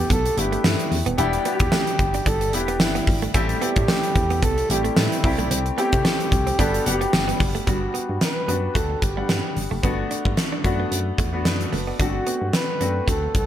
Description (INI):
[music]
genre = 1980s-style pop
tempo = 111 BPM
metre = 4/4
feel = swing 55% on 16ths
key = G major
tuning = A4 = 440 Hz
[part]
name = breathy flugelhorn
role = melody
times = 0.0-13.5 s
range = E4 to B4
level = -26 LUFS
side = equal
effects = none
[part]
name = clear baby grand piano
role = accompaniment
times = 0.0-13.5 s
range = G3 to F#5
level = -26 LUFS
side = left 2 dB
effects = lush chorus
[part]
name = direct-recorded clean electric guitar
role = riff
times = 0.0-13.3 s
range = G3 to D4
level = -32 LUFS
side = right 6 dB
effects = wide subtle chorus
[part]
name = solid FM bass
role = bass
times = 0.0-13.5 s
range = Eb1 to C3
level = -26 LUFS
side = equal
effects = none
[part]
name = gated 80s drum kit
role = drums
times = 0.1-13.5 s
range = hi-hat, kick drum, snare drum, tambourine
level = -22 LUFS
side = equal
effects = gated reverb
[sound]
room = moderate plate reverb, RT60 2.1 s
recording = bright 1980s-style digital production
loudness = -19 LUFS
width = side -11 dB against mid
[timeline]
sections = 0.0-7.7 A section; 7.7-13.5 B section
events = none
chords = 0.0 G69; 1.2 Em7; 3.3 Am7; 5.2 C6; 6.6 Gmaj7; 9.8 Bm7/G; 12.0 D7/G